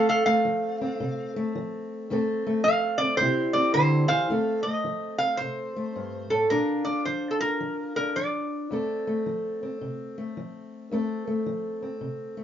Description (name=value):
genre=acoustic country blues, solo or duo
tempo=109 BPM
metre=4/4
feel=swing 65% on 8ths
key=F major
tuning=A4 = 440 Hz
part: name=metal-body resonator slide guitar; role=melody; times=0.0-9.2 s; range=A4 to F5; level=-25 LUFS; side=right 1 dB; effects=none
part: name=fingerpicked steel-string acoustic guitar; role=accompaniment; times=0.0-12.4 s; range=F2 to A4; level=-27 LUFS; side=left 1 dB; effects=none
room=moderate studio reverb, RT60 0.5 s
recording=band playing live in one room, nothing above 7.5 kHz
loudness=-24 LUFS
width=side -10 dB against mid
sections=0.0-4.3 A section; 4.3-12.4 B section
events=resonator guitar played with a steel bar solo 0.0-4.3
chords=0.0 F; 3.2 C; 4.3 F; 6.5 Bb; 8.7 F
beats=0.45 1.00 1.55 | 2.10 2.65 3.20 3.75 | 4.30 4.85 5.40 5.95 | 6.50 7.05 7.60 8.15 | 8.71 9.26 9.81 10.36 | 10.91 11.46 12.01